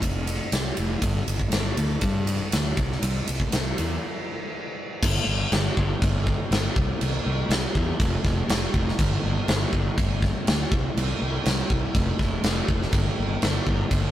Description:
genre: quiet-loud alternative rock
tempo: 121 BPM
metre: 4/4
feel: straight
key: unclear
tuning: A4 = 440 Hz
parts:
  - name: fuzz fingered electric bass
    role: bass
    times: 0.0-14.1 s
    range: F1 to G2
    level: -25 LUFS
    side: equal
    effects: overdrive
  - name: huge arena drum kit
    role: drums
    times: 0.0-14.0 s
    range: crash cymbal, kick drum, ride cymbal, snare drum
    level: -24 LUFS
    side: equal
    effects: none
room: light reverb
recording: rough rehearsal-room recording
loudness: -22 LUFS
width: side -12 dB against mid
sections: 0.0-5.0 A section; 5.0-14.1 B section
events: break 4.0-5.0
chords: none

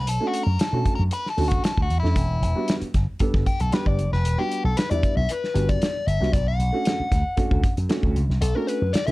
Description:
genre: funk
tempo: 115 BPM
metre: 4/4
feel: straight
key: E dorian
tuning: A4 = 436 Hz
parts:
  - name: crunchy overdriven guitar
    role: accompaniment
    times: 0.0-9.1 s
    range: E4 to F#5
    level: -27 LUFS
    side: left 3 dB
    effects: wah
  - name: slap bass with an envelope filter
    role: bass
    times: 0.0-9.1 s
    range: E1 to B2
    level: -22 LUFS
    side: equal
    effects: none
  - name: warm soul drum kit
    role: drums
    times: 0.1-9.1 s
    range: hi-hat, kick drum, snare drum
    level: -24 LUFS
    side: equal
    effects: none
  - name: dark upright piano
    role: stabs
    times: 0.2-9.1 s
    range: G3 to A4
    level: -28 LUFS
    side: right 2 dB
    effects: none
room: little or no reverb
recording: dark, warm production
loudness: -20 LUFS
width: side -19 dB against mid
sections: 0.0-9.1 A section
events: overdriven electric guitar solo 0.0-9.1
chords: 0.0 Bm7; 2.2 Em7; 6.3 Bm7

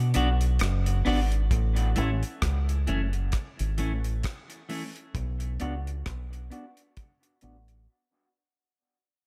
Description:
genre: dub reggae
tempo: 66 BPM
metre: 4/4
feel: swing 57% on 16ths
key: unclear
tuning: A4 = 440 Hz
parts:
  - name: deep dub fingered electric bass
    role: bass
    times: 0.0-7.9 s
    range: F#1 to B2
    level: -28 LUFS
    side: equal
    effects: none
  - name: clean electric guitar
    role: accompaniment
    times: 0.1-7.6 s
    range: E3 to F#4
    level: -35 LUFS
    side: equal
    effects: spring reverb, low-pass filter, dub echo
  - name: deep reggae drum kit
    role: drums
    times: 0.1-7.9 s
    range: hi-hat, kick drum, rim click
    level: -34 LUFS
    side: equal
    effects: none
room: small room ambience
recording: none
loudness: -28 LUFS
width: mono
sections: 0.0-1.5 A section; 1.5-8.8 B section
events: break 0.0-1.5, 7.9-8.8; fade-out 1.5-8.8; filter sweep on clean electric guitar 1.5-8.8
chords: 0.0 Bm; 1.5 A; 5.1 Bm

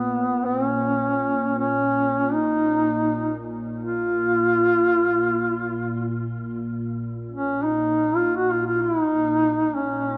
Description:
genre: caucasian folk, Caucasian lament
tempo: free time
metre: none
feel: none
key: Bb phrygian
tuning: A4 = 440 Hz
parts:
  - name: mellow duduk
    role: melody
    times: 0.0-10.2 s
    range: Cb4 to Gb4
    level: -23 LUFS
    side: equal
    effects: tape echo
  - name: deep dark ambient pad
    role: drone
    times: 0.0-10.2 s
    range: Bb2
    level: -32 LUFS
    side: equal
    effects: chorus, built-in reverb
room: moderate recital hall reverb, RT60 1.6 s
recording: dark, warm production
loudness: -23 LUFS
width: mono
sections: 0.0-10.2 A section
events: none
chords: none

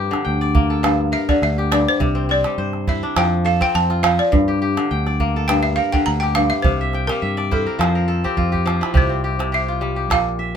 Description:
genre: west african traditional, West African string and xylophone music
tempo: 104 BPM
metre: 4/4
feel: swing 54% on 16ths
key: unclear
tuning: A4 = 439 Hz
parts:
  - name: kora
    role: arpeggios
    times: 0.0-10.6 s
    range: G2 to G5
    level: -21 LUFS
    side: left 2 dB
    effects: none
  - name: fingered electric bass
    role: bass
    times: 0.0-10.6 s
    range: Bb1 to G2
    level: -22 LUFS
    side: equal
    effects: none
  - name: calabash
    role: percussion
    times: 0.1-10.3 s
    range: none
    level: -21 LUFS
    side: right 3 dB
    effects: none
  - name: balafon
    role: melody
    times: 0.8-10.6 s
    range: A4 to Bb5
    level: -21 LUFS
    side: right 1 dB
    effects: none
room: light reverb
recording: minimal, uncompressed stereo recording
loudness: -16 LUFS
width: side -8 dB against mid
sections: 0.0-9.0 A section; 9.0-10.6 B section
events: balafon solo 0.0-9.0; kora fill 6.6-9.0; drum fill 8.2-9.0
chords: 0.0 Gm; 2.0 C; 3.2 F; 4.3 Gm; 6.6 C; 7.8 F; 9.0 C

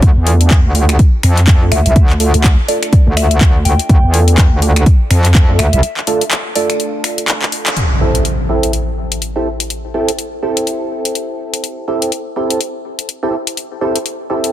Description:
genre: bass house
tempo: 124 BPM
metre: 4/4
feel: swing 58% on 16ths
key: A minor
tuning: A4 = 440 Hz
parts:
  - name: metallic wobble bass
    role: bass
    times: 0.0-5.8 s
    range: C2 to F2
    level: -11 LUFS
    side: equal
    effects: chorus, overdrive, sidechain pumping
  - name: electronic kick drum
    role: drums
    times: 0.0-5.5 s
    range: none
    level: -9 LUFS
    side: equal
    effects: overdrive
  - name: house drum kit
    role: drums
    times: 0.0-14.5 s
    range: finger snaps, handclaps, hi-hat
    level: -18 LUFS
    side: left 2 dB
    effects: overdrive
  - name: percussive organ stab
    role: stabs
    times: 0.3-14.5 s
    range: A3 to A4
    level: -19 LUFS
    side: right 2 dB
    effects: ensemble chorus, sidechain pumping, ping-pong delay
  - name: soft synth bell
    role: melody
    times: 1.7-6.7 s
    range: D5 to G5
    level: -22 LUFS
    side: equal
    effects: chorus, phaser, ping-pong delay
  - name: impact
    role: sound effects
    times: 7.8-9.7 s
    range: none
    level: -17 LUFS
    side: equal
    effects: none
room: light reverb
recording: dense, heavily limited modern master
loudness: -11 LUFS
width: side -13 dB against mid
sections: 0.0-7.8 A section; 7.8-14.5 B section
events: filter sweep on wobble bass 0.0-7.8; break 5.8-7.8; drum fill 7.4-7.8; band accent 7.6; impact 7.8-9.7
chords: 0.0 Dm; 7.8 Am7

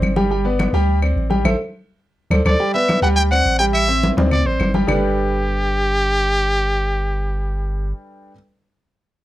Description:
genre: latin, salsa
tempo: 210 BPM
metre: 4/4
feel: straight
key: G major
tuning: A4 = 443 Hz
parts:
  - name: clear grand piano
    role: accompaniment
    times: 0.0-8.3 s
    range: G3 to G5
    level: -22 LUFS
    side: equal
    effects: none
  - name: punchy sub bass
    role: bass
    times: 0.0-7.9 s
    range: G1 to D2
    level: -20 LUFS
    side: equal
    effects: none
  - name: claves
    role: percussion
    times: 0.0-5.0 s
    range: none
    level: -28 LUFS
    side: left 3 dB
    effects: none
  - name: congas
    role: percussion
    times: 0.0-5.0 s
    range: none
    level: -22 LUFS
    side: equal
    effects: none
  - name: bright trumpet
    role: melody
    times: 2.5-7.9 s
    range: G4 to G5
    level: -20 LUFS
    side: equal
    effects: none
room: little or no reverb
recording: close, detailed microphones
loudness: -16 LUFS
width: side -15 dB against mid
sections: 0.0-2.6 A section; 2.6-4.9 B section; 4.9-7.2 C section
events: band accent 1.5-2.6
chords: 0.3 G; 0.9 D7sus4; 1.5 Am; 2.0 D5; 2.6 G; 3.2 D7sus4; 3.7 Am7; 4.3 D7sus4; 4.9 Gadd9

